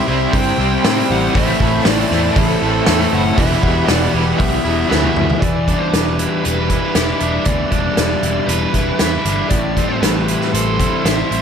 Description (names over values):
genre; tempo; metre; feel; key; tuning
rock, shoegaze and dream pop; 118 BPM; 4/4; straight; E minor; A4 = 440 Hz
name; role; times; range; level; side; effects
fuzz lead guitar; melody; 0.0-11.4 s; G4 to G5; -23 LUFS; left 1 dB; distortion, diffuse ambient delay
hollow soft pad; sustained chords; 0.0-5.4 s; E4 to C6; -25 LUFS; equal; ensemble chorus
crunchy overdriven guitar; riff; 0.0-11.4 s; A2 to C5; -20 LUFS; right 7 dB; reverse reverb
overdriven semi-hollow guitar; riff; 0.0-5.4 s; E2 to C4; -22 LUFS; equal; tremolo
thick fuzz guitar; riff; 0.0-11.4 s; E2 to E4; -21 LUFS; left 8 dB; distortion, analog chorus
vintage muted picked electric bass; bass; 0.1-11.4 s; E1 to A2; -21 LUFS; equal; none
loose indie drum kit; drums; 0.3-11.4 s; hi-hat, kick drum, snare drum, toms; -19 LUFS; equal; none
room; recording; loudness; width
moderate lush hall reverb, RT60 1.6 s, studio ambience; dreamy mix soaked in reverb; -13 LUFS; side -7 dB against mid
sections
0.0-5.4 A section; 5.4-11.4 B section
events
drum fill 4.9-5.4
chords
0.0 C; 1.3 Amadd9; 3.4 Emadd9; 5.4 Em7; 9.5 Am7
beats
0.33 0.84 | 1.35 1.85 2.36 2.87 | 3.38 3.89 4.40 4.91 | 5.42 5.93 6.44 6.95 | 7.46 7.97 8.48 9.00 | 9.51 10.02 10.53 11.04